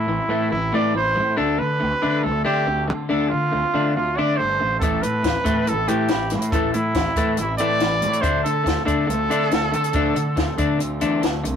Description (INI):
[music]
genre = indie rock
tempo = 140 BPM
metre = 4/4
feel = straight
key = unclear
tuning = A4 = 440 Hz
[part]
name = bright trumpet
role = melody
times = 0.0-11.2 s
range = E4 to D5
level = -22 LUFS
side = right 2 dB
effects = none
[part]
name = overdriven electric guitar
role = riff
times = 0.0-11.6 s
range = A2 to D4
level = -24 LUFS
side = left 3 dB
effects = none
[part]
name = twelve-string electric guitar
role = riff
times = 0.0-11.6 s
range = A2 to B4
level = -35 LUFS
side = right 6 dB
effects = none
[part]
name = fuzz picked electric bass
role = bass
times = 0.0-11.6 s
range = G1 to D3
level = -25 LUFS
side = equal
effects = overdrive
[part]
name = compact cocktail drum kit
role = drums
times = 4.8-11.6 s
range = hi-hat, kick drum, snare drum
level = -24 LUFS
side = left 1 dB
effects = none
[sound]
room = moderate small room reverb, RT60 0.5 s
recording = rough rehearsal-room recording, warm saturation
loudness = -18 LUFS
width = side -8 dB against mid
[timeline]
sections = 0.0-11.6 A section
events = none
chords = 0.0 Amadd9; 1.4 Dm7; 4.8 Amadd9; 8.2 Dm7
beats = 0.09 0.52 0.94 | 1.37 1.80 2.23 2.66 | 3.09 3.52 3.95 4.38 | 4.80 5.23 5.66 6.09 | 6.52 6.95 7.38 7.81 | 8.24 8.67 9.10 9.52 | 9.95 10.38 10.81 11.24